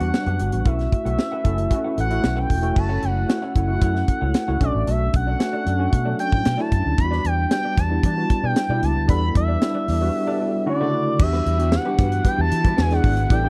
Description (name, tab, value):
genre	polished 1980s jazz-funk pop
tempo	114 BPM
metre	4/4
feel	straight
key	E dorian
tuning	A4 = 440 Hz
part	expressive synth lead	melody	0.0-13.5 s	D5 to B5	-28 LUFS	equal	chorus
part	tine electric piano	accompaniment	0.0-13.5 s	C#3 to A4	-28 LUFS	equal	ensemble chorus
part	mellow electric guitar	riff	0.0-13.5 s	G3 to F#5	-36 LUFS	equal	lush chorus
part	fingered electric bass with an envelope filter	bass	0.0-13.5 s	E1 to E3	-25 LUFS	equal	none
part	tight funk drum kit	drums	0.0-13.4 s	crash cymbal, hi-hat, kick drum, snare drum	-22 LUFS	equal	none
part	warm studio string section	sustained chords	11.2-13.5 s	D3 to E4	-35 LUFS	equal	none
room	little or no reverb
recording	dry, close 1970s-style studio recording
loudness	-21 LUFS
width	mono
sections	0.0-2.8 A section; 2.8-11.2 B section; 11.2-13.5 C section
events	none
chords	0.0 Em9; 0.7 B7sus4; 2.8 F#m7; 4.6 Bm7; 7.0 Em7; 10.7 Dmaj7; 11.2 Em9; 12.8 E9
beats	0.13 | 0.66 1.19 1.71 2.24 | 2.77 3.29 3.82 4.35 | 4.87 5.40 5.93 6.45 | 6.98 7.51 8.04 8.56 | 9.09 9.62 10.14 10.67 | 11.20 11.72 12.25 12.78 | 13.30